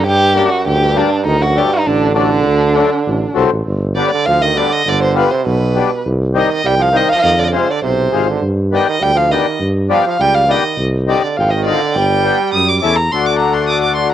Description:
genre	klezmer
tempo	101 BPM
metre	2/4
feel	straight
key	D phrygian dominant, G phrygian dominant from 3.7 s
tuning	A4 = 440 Hz
part	dark violin	melody	0.0-14.1 s	D4 to Eb6	-16 LUFS	equal	cassette tape
part	brilliant trombone	second line	0.0-12.8 s	F#2 to G3	-18 LUFS	right 7 dB	none
part	mellow tuba	bass	0.0-14.1 s	G1 to G2	-17 LUFS	equal	none
part	accordion	accompaniment	0.3-14.1 s	F#3 to A4	-17 LUFS	left 7 dB	none
room	moderate spring reverb, RT60 1.3 s, small room ambience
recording	home recording on cassette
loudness	-12 LUFS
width	side -11 dB against mid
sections	0.0-3.7 A section; 3.7-13.1 B section; 13.1-14.1 C section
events	speeding up 0.0-14.1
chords	0.0 Gm; 1.3 D; 3.7 G; 6.0 Cm; 7.2 Fm; 8.4 G; 10.8 Cm; 12.0 G; 12.5 A7; 13.1 D

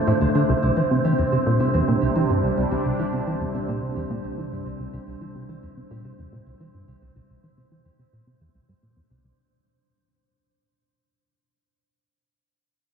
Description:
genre	ambient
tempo	108 BPM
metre	4/4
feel	straight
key	unclear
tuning	A4 = 440 Hz
part	sweeping resonant pad	sustained chords	0.0-9.4 s	C3 to E5	-27 LUFS	right 1 dB	chorus
part	concert harp	arpeggios	0.0-11.9 s	C4 to D5	-33 LUFS	left 3 dB	auto-pan, ping-pong delay
part	analog drone	bass	0.0-9.4 s	C2 to D2	-44 LUFS	equal	none
part	wind-like tuned noise texture	texture	0.0-9.4 s	C5	-28 LUFS	right 4 dB	built-in reverb
part	plucky analog bass	riff	0.1-9.3 s	C2 to E3	-24 LUFS	equal	analog chorus, ping-pong delay
room	wet cathedral reverb, RT60 5.0 s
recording	in a vast, echoing space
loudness	-20 LUFS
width	side -7 dB against mid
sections	0.0-9.4 A section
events	fade-out on harp 0.0-9.4; fade-out 0.0-9.4; filter sweep on analog synth bass 0.0-9.4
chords	0.5 Cadd9

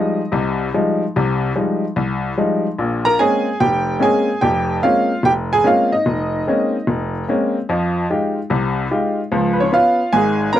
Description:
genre	solo jazz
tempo	147 BPM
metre	4/4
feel	swing 65% on 8ths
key	F minor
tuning	A4 = 440 Hz
part	bright upright piano	solo	0.0-10.6 s	F1 to Bb5	-15 LUFS	equal	none
room	light reverb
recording	dry, close 1970s-style studio recording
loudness	-15 LUFS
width	side -11 dB against mid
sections	0.0-10.6 A section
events	none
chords	0.0 Fm9; 2.8 Bbm9; 7.7 Fm9; 9.3 Db7

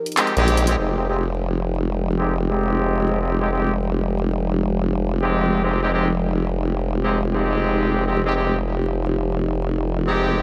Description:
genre	glitch hop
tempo	99 BPM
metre	4/4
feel	swing 64% on 16ths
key	F minor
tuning	A4 = 439 Hz
part	warbly tape-like pad	sustained chords	0.0-10.4 s	F3 to Bb4	-28 LUFS	equal	chorus, built-in reverb, phaser
part	dubstep drum kit	drums	0.1-0.8 s	handclaps, hi-hat	-25 LUFS	equal	low-pass filter on hats, low-pass filter on snare
part	clear horn section	stabs	0.2-10.4 s	Ab3 to G4	-25 LUFS	equal	low-pass filter, delay
part	formant-sweep wobble bass	bass	0.4-10.4 s	F1 to Bb1	-24 LUFS	equal	chorus, tube saturation
room	light reverb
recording	vinyl crackle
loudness	-21 LUFS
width	mono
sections	0.8-10.4 A section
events	band accent 0.2-0.5; drum fill 0.5-0.8; filter sweep on horn section 0.8-10.4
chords	0.0 Fm9

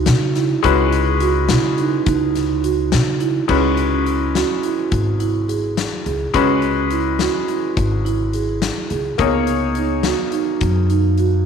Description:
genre	progressive instrumental, band music in an uneven meter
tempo	210 BPM (eighths)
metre	5/8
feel	straight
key	C# dorian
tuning	A4 = 438 Hz
part	bright concert grand piano	accompaniment	0.0-11.5 s	G#3 to C#5	-22 LUFS	left 10 dB	none
part	marimba with soft mallets	arpeggios	0.0-11.5 s	B3 to G#4	-20 LUFS	right 8 dB	tape echo
part	upright bass	bass	0.0-11.5 s	G#1 to C#3	-20 LUFS	left 1 dB	none
part	huge arena drum kit	drums	0.1-11.3 s	crash cymbal, hi-hat, kick drum, snare drum	-25 LUFS	left 6 dB	none
room	moderate echo chamber reverb, RT60 2.1 s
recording	1960s-style stereo with parts hard left and right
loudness	-16 LUFS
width	side -7 dB against mid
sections	0.0-3.5 A section; 3.5-11.5 B section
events	none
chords	0.0 C#m9; 3.5 C#m7; 9.2 B/C#

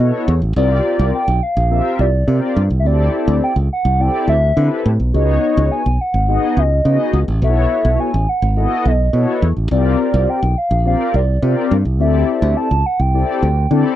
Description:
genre	early-eighties boogie funk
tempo	105 BPM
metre	4/4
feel	straight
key	unclear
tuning	A4 = 437 Hz
part	hollow clarinet-like synth lead	melody	0.0-14.0 s	D5 to A5	-19 LUFS	right 1 dB	chorus, slapback echo
part	mellow synth brass	accompaniment	0.0-14.0 s	B3 to E5	-19 LUFS	left 4 dB	chorus, tremolo
part	modern bright fingered electric bass	bass	0.0-13.8 s	G#1 to D3	-15 LUFS	right 1 dB	none
room	little or no reverb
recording	dry, close 1970s-style studio recording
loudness	-13 LUFS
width	side -12 dB against mid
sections	0.0-14.0 A section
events	none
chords	0.0 B9sus4; 0.6 C9sus4; 2.9 D9sus4; 5.1 C#9sus4; 7.4 B9sus4; 9.7 C9sus4; 12.0 D9sus4

